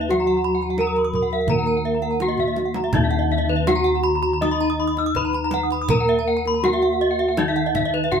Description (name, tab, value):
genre	Balinese gamelan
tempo	81 BPM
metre	4/4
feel	straight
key	Eb pelog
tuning	A4 = 440 Hz
part	gamelan-type bronze metallophone	melody	0.0-8.2 s	Eb4 to Eb5	-22 LUFS	right 1 dB	none
part	gamelan-type bronze metallophone	accompaniment	0.0-8.2 s	Eb3 to Eb4	-28 LUFS	left 4 dB	none
part	gamelan-type bronze metallophone	arpeggios	0.0-8.1 s	Eb5 to Eb6	-27 LUFS	right 6 dB	none
part	gamelan-type bossed gongs	bass	0.0-8.2 s	Eb2 to Bb4	-26 LUFS	left 1 dB	none
part	gamelan-type bronze metallophone	arpeggios	0.1-8.2 s	Cb5 to Fb6+35c	-26 LUFS	left 6 dB	none
part	kendang	percussion	0.1-8.2 s	none	-27 LUFS	right 2 dB	none
room	wet studio ambience, RT60 0.5 s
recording	band playing live in one room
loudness	-18 LUFS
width	side -7 dB against mid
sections	0.0-2.9 A section; 2.9-8.2 B section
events	drum fill 2.4-2.9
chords	none